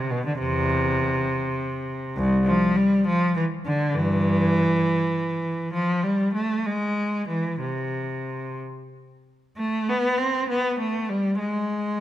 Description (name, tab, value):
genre	classical, baroque-style suite movement for unaccompanied cello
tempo	60-70 BPM (dotted quarters)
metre	6/8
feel	rubato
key	unclear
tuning	A4 = 442 Hz
part	rich cello	solo	0.0-12.0 s	C2 to C4	-22 LUFS	equal	none
room	moderate recital hall reverb, RT60 1.7 s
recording	none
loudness	-21 LUFS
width	side -13 dB against mid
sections	0.0-9.6 A section; 9.6-12.0 B section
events	none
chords	none